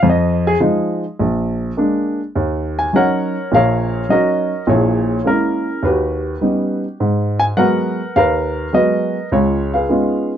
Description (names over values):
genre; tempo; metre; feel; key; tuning
solo jazz; 103 BPM; 4/4; swing 69% on 8ths; Eb minor; A4 = 439 Hz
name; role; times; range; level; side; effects
warm baby grand piano; solo; 0.0-10.4 s; Bb1 to Ab5; -14 LUFS; equal; none
room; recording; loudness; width
light reverb; dry, close 1970s-style studio recording; -15 LUFS; side -9 dB against mid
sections
0.0-2.4 A section; 2.4-10.4 B section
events
grand piano solo 0.0-2.4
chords
0.0 Fm7; 1.2 Bb7; 2.4 Ebm7; 4.7 Bbm7b5; 5.8 Eb7alt; 7.0 Abm9; 9.3 Db9